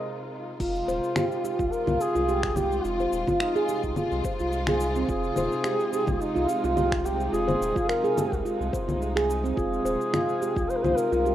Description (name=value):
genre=organic downtempo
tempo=107 BPM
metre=4/4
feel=swing 54% on 16ths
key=F minor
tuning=A4 = 440 Hz
part: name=dark studio string section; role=sustained chords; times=0.0-11.3 s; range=C3 to F4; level=-33 LUFS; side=left 1 dB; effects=sidechain pumping
part: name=handpan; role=arpeggios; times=0.0-11.3 s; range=C4 to C5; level=-27 LUFS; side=right 2 dB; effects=tape echo
part: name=mellow duduk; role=melody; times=0.6-11.3 s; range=Eb4 to C5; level=-29 LUFS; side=left 2 dB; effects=tape echo
part: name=warm sub bass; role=bass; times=0.6-11.3 s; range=Eb1 to C2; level=-32 LUFS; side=left 1 dB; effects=sidechain pumping
part: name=afro-pop drum kit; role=drums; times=0.6-11.3 s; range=cabasa, congas, crash cymbal, finger snaps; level=-32 LUFS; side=left 2 dB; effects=studio reverb
part: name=electronic kick drum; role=drums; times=0.6-10.7 s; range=none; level=-33 LUFS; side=left 1 dB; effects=studio reverb
room=light reverb, small room ambience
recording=rough home demo mix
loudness=-23 LUFS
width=side -12 dB against mid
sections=0.6-11.3 A section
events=break 0.0-0.6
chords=0.0 Fm7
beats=0.04 | 0.60 1.16 1.72 2.28 | 2.84 3.40 3.97 4.53 | 5.09 5.65 6.21 6.77 | 7.33 7.89 8.45 9.01 | 9.57 10.13 10.70 11.26